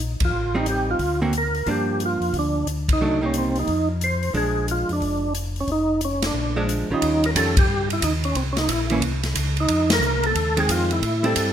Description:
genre	soul jazz organ trio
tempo	180 BPM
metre	4/4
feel	swing 64% on 8ths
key	Bb mixolydian, Eb mixolydian from 7.0 s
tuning	A4 = 442 Hz
part	mellow tonewheel organ	bass	0.0-11.5 s	F1 to A2	-26 LUFS	left 1 dB	slow rotary speaker
part	overdriven tonewheel organ	melody	0.2-11.5 s	C4 to C5	-23 LUFS	right 1 dB	slow rotary speaker, chorus vibrato
part	swinging big-band drum kit	drums	0.2-11.5 s	hi-hat, kick drum, ride cymbal, snare drum	-26 LUFS	equal	none
part	archtop guitar, miked and amplified	accompaniment	0.5-11.5 s	D3 to F#4	-26 LUFS	right 2 dB	none
room	light reverb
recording	minimal, uncompressed stereo recording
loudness	-19 LUFS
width	side -9 dB against mid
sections	0.0-7.0 A section; 7.0-11.5 B section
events	band accent 0.2, 2.8, 6.2, 7.5, 9.9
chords	0.3 Am7b5; 1.0 Daug7; 1.7 Gm7; 3.0 Cm7; 3.7 F5; 4.3 Bb7; 5.7 Dbadd9/F; 6.3 Bb7; 7.0 Eb9; 8.4 C7b9; 9.7 Fm7; 11.0 Am7

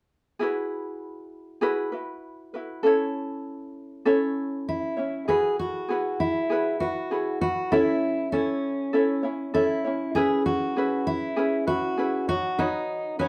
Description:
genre	pop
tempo	99 BPM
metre	4/4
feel	swing 55% on 16ths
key	E major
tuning	A4 = 439 Hz
part	ukulele	accompaniment	0.4-13.3 s	C#4 to C#5	-28 LUFS	equal	none
part	fingerpicked steel-string acoustic guitar	melody	4.7-13.3 s	C#4 to G#4	-29 LUFS	equal	none
room	moderate small room reverb, RT60 0.5 s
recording	band playing live in one room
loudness	-26 LUFS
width	mono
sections	0.4-5.3 A section; 5.3-13.3 B section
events	none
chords	0.4 Eadd9; 2.8 A; 5.3 Eadd9; 7.7 A; 10.2 C#m7; 12.3 Badd9

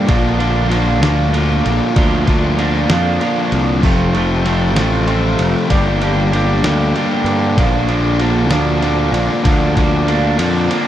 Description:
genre	indie rock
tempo	64 BPM (dotted quarters)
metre	6/8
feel	straight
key	unclear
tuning	A4 = 441 Hz
part	electric guitar through a small old amp	riff	0.0-10.9 s	F3 to G4	-19 LUFS	right 6 dB	lush chorus, tape echo
part	fuzz guitar	riff	0.0-10.9 s	F2 to G4	-18 LUFS	left 5 dB	distortion
part	fuzz picked electric bass	bass	0.0-10.7 s	F1 to G2	-17 LUFS	equal	overdrive
part	lo-fi sampler-style drum kit	drums	0.1-10.9 s	crash cymbal, kick drum, ride cymbal, snare drum	-21 LUFS	equal	none
room	little or no reverb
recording	dry, close 1970s-style studio recording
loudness	-12 LUFS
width	side -11 dB against mid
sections	0.0-10.9 A section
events	kick and snare drop out 10.4-10.9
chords	0.1 Bb; 3.8 F; 5.7 Gm; 7.6 Bb

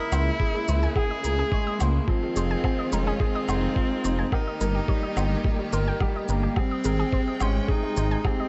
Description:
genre	piano and strings electronica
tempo	107 BPM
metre	4/4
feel	straight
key	Ab major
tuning	A4 = 440 Hz
part	dark cello	melody	0.0-8.5 s	Bb3 to Ab4	-32 LUFS	equal	none
part	clear studio string section	sustained chords	0.0-8.5 s	C3 to G5	-38 LUFS	equal	sidechain pumping
part	analog pluck	arpeggios	0.0-8.5 s	G3 to Ab5	-38 LUFS	equal	chorus, cassette tape, sidechain pumping, tape echo
part	felt-muted upright piano	riff	0.0-8.5 s	F3 to C5	-33 LUFS	equal	none
part	dark detuned saw bass	bass	0.1-8.2 s	F1 to Db2	-27 LUFS	equal	sidechain pumping
part	shaker and woodblock	drums	0.1-8.4 s	none	-37 LUFS	equal	none
part	electronic kick drum	drums	0.4-8.4 s	none	-28 LUFS	equal	none
room	small room ambience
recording	nothing above 8.0 kHz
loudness	-25 LUFS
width	mono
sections	0.0-8.5 A section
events	none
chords	0.0 Dbm6; 2.1 Fm7; 4.3 Eb/G; 6.6 Abmaj7

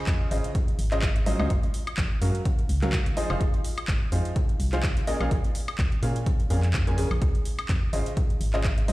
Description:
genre	piano house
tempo	126 BPM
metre	4/4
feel	swing 55% on 16ths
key	Db major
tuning	A4 = 440 Hz
part	clear upright piano	riff	0.0-8.9 s	Bb2 to Ab5	-30 LUFS	equal	sidechain pumping, digital delay
part	organ-like FM bass	bass	0.1-8.9 s	F1 to Bb2	-26 LUFS	equal	sidechain pumping
part	electronic kick drum	drums	0.1-8.8 s	none	-26 LUFS	equal	none
part	garage drum kit	drums	0.1-8.9 s	handclaps, hi-hat, woodblock	-34 LUFS	equal	overdrive
room	digital ambience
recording	played on a big sound system in a bare room, stone room reverb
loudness	-23 LUFS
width	side -18 dB against mid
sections	0.0-8.9 A section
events	none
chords	0.0 Dbmaj9; 1.5 Gbmaj7; 3.2 Fm7; 5.1 Bbm7; 7.2 Dbmaj9

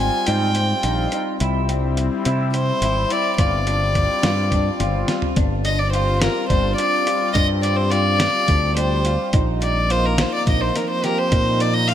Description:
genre	progressive instrumental, band music in an uneven meter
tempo	212 BPM (eighths)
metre	7/8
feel	straight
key	G phrygian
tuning	A4 = 441 Hz
part	warm violin	melody	0.0-11.9 s	Bb4 to Ab5	-21 LUFS	left 1 dB	none
part	sweeping resonant pad	accompaniment	0.0-11.9 s	F3 to G4	-26 LUFS	left 2 dB	chorus
part	clean electric guitar	arpeggios	0.0-11.9 s	C4 to G4	-27 LUFS	equal	analog chorus, ping-pong delay
part	modern bright fingered electric bass	bass	0.0-11.9 s	G1 to C3	-21 LUFS	equal	none
part	dusty soul sampler-style drum kit	drums	0.3-11.9 s	hi-hat, kick drum, snare drum, toms	-22 LUFS	equal	none
room	light reverb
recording	bright 1980s-style digital production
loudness	-17 LUFS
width	side -10 dB against mid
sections	0.0-5.4 A section; 5.4-11.9 B section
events	drum fill 4.8-5.4; violin solo 5.4-11.9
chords	0.0 Abmaj7; 1.4 C; 3.4 G5; 9.3 Bbsus4

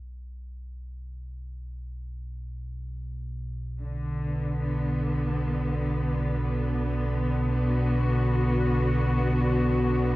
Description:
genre	dark ambient drone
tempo	free time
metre	none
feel	none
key	B minor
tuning	A4 = 440 Hz
part	deep rumbling drone	drone	0.0-10.2 s	B1 to B2	-28 LUFS	right 1 dB	built-in reverb
part	muted studio cello section	sustained chords	3.8-10.2 s	D3 to F#4	-27 LUFS	left 1 dB	none
room	moderate huge ambient reverb, RT60 9.0 s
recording	worn, warbling old tape, cassette tape, warbly pitch drift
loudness	-24 LUFS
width	side -18 dB against mid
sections	0.0-10.2 A section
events	fade-in on synth drone 0.0-10.2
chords	0.0 Bm

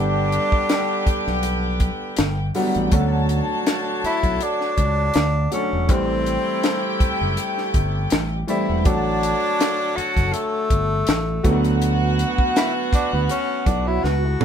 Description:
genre	lush 1970s-style soul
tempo	81 BPM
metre	4/4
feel	swing 54% on 16ths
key	D major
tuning	A4 = 440 Hz
part	breathy tenor saxophone	melody	0.0-14.4 s	A3 to F#4	-24 LUFS	left 1 dB	none
part	dark studio string section	second line	0.0-14.4 s	D4 to A5	-28 LUFS	left 1 dB	none
part	warm concert grand piano	accompaniment	0.0-14.4 s	D3 to C#5	-26 LUFS	right 1 dB	none
part	warm horn section	stabs	0.0-14.4 s	B2 to C#5	-28 LUFS	right 2 dB	none
part	fingered electric bass	bass	0.0-14.3 s	E1 to D2	-23 LUFS	equal	none
part	tight funk drum kit	drums	0.3-14.4 s	hi-hat, kick drum, snare drum, toms	-22 LUFS	equal	none
part	electric guitar through a small old amp	riff	13.7-14.4 s	E4 to C#5	-27 LUFS	right 5 dB	harmonic tremolo
room	moderate studio reverb, RT60 0.6 s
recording	band playing live in one room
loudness	-18 LUFS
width	side -8 dB against mid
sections	0.0-14.4 A section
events	tenor saxophone solo 0.0-14.4; drum fill 14.0-14.4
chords	0.0 Gmaj7; 2.9 Dmaj7; 5.9 Am7; 8.9 Dmaj7; 11.4 D6

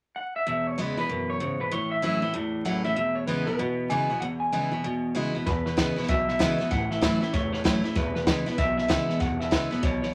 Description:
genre	rockabilly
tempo	192 BPM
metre	4/4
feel	swing 62% on 8ths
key	E major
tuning	A4 = 440 Hz
part	electric guitar through a small old amp	melody	0.2-10.1 s	B4 to G#5	-32 LUFS	equal	none
part	picked steel-string acoustic guitar	accompaniment	0.5-10.1 s	E2 to E4	-32 LUFS	equal	none
part	clean electric guitar	riff	0.5-10.1 s	E2 to F#3	-33 LUFS	equal	none
part	upright bass	bass	5.5-10.1 s	E1 to E2	-36 LUFS	equal	none
part	compact cocktail drum kit	drums	5.5-10.1 s	hi-hat, kick drum, snare drum	-30 LUFS	equal	none
room	moderate studio reverb, RT60 0.5 s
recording	vinyl crackle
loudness	-26 LUFS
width	mono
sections	0.5-5.5 A section; 5.5-10.1 B section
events	none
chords	0.5 E; 1.7 A; 3.0 E; 6.7 A; 8.0 E

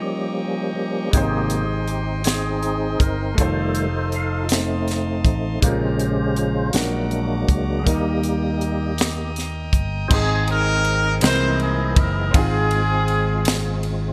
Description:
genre	slow gospel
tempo	54 BPM (dotted quarters)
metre	6/8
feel	straight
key	Ab major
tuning	A4 = 444 Hz
part	clear grand piano	accompaniment	0.0-14.1 s	Ab2 to F5	-31 LUFS	equal	none
part	percussive tonewheel organ	sustained chords	0.0-14.1 s	C3 to F5	-27 LUFS	equal	slow rotary speaker, overdrive, chorus vibrato
part	pipe organ, foundations	sustained chords	0.0-10.1 s	Eb5 to Eb6	-35 LUFS	equal	none
part	fingered electric bass	bass	1.1-14.1 s	F1 to Eb2	-26 LUFS	equal	none
part	crisp fusion drum kit	drums	1.1-14.0 s	crash cymbal, hi-hat, kick drum, ride cymbal, snare drum	-22 LUFS	equal	none
part	clear horn section	melody	10.1-13.8 s	C4 to C5	-24 LUFS	equal	delay
room	light reverb, studio reverb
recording	bright 1980s-style digital production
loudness	-21 LUFS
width	mono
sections	0.0-10.1 A section; 10.1-14.1 B section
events	tonewheel organ solo 0.0-10.1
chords	0.0 Eb7; 1.1 Abmaj7; 3.4 F7; 5.6 Bbm7; 6.8 Bb7alt; 7.9 Eb; 10.1 Ab; 11.2 C7alt; 12.3 Fm/Ab

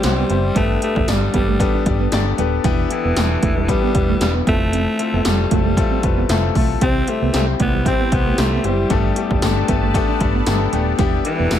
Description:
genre	1980s-style pop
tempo	115 BPM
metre	4/4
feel	swing 55% on 16ths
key	unclear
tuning	A4 = 440 Hz
part	breathy alto saxophone	melody	0.0-11.6 s	E3 to C4	-23 LUFS	right 1 dB	ping-pong delay
part	clear concert grand piano	accompaniment	0.0-11.6 s	G2 to D5	-22 LUFS	left 9 dB	none
part	mellow electric guitar	riff	0.0-11.5 s	G3 to D4	-26 LUFS	right 8 dB	analog chorus, ping-pong delay
part	vintage muted fingered electric bass	bass	0.0-11.6 s	D#1 to C2	-21 LUFS	right 1 dB	none
part	80s electronic pad drums	drums	0.0-11.6 s	hi-hat, kick drum, snare drum, tambourine	-20 LUFS	right 1 dB	gated reverb
part	phased analog pad	sustained chords	6.8-11.6 s	E4 to A5	-28 LUFS	right 2 dB	phaser, chorus
room	digital ambience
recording	none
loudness	-15 LUFS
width	side -10 dB against mid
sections	0.0-11.6 A section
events	none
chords	0.0 C; 0.6 Gadd9; 2.6 Em7; 4.5 Fmaj7; 6.8 C; 8.9 Gadd9; 11.0 Em7

